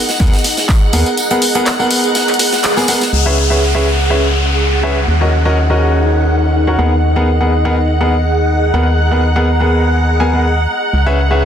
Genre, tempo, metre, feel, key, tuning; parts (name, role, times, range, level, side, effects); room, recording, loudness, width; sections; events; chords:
piano house; 123 BPM; 4/4; swing 54% on 16ths; G# minor; A4 = 440 Hz
string machine, violins; sustained chords; 0.0-11.4 s; F#5; -21 LUFS; equal; ensemble chorus, sidechain pumping
ethereal airy pad; texture; 0.0-11.4 s; C#4 to A#5; -19 LUFS; equal; ensemble chorus, built-in reverb, tremolo, sidechain pumping
punchy analog drum machine; drums; 0.1-3.1 s; handclaps, hi-hat, tambourine; -18 LUFS; equal
tight metal drum kit; drums; 0.1-3.1 s; hi-hat, snare drum, tambourine; -21 LUFS; right 2 dB; high-pass filter on hats, high-pass filter on snare, high-pass filter on perc, high-pass filter on room
tambourine; percussion; 0.1-3.1 s; -28 LUFS; left 6 dB
clear concert grand piano; riff; 0.2-11.4 s; B3 to G#5; -17 LUFS; equal; sidechain pumping, tape echo
organ-like FM bass; bass; 0.2-11.4 s; C#2 to D#2; -14 LUFS; equal; sidechain pumping
electronic kick drum; drums; 0.2-0.8 s; -12 LUFS; equal
downlifter; sound effects; 3.1-7.0 s; -20 LUFS; left 2 dB
light reverb, studio reverb; dense, heavily limited modern master; -11 LUFS; side -8 dB against mid
0.0-3.1 A section; 3.1-11.4 B section
band accent 2.6; filter sweep on string machine 3.1-11.4
0.0 G#m9/D#; 3.1 C#m7; 5.1 D#m7; 6.8 G#m9/D#; 10.9 C#m7